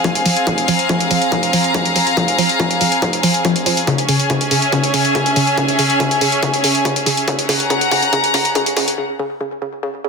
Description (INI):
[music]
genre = driving peak-time techno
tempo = 141 BPM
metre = 4/4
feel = straight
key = unclear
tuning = A4 = 441 Hz
[part]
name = woody wave-folded pluck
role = riff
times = 0.0-10.1 s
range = Db3 to F3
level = -20 LUFS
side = equal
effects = chorus, tube saturation, sidechain pumping, digital delay
[part]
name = electronic hi-hat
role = drums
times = 0.0-9.0 s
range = none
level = -20 LUFS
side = equal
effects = none
[part]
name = electronic kick drum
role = drums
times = 0.0-8.9 s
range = none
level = -23 LUFS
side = equal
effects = distortion, high-pass filter on kick, high-pass filter on room
[part]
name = warm studio string section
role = texture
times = 0.0-9.0 s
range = C4 to Bb5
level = -17 LUFS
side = equal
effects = sidechain pumping
[sound]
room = moderate digital room reverb, RT60 1.0 s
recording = dense, heavily limited modern master, high-pass filter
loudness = -14 LUFS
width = side -4 dB against mid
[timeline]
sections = 0.0-10.1 A section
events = build-up 0.0-10.1; filter sweep on synth arpeggio sound 0.0-10.1; drum fill 3.9-9.0; break 9.0-10.1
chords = 0.0 Fm; 3.9 Dbm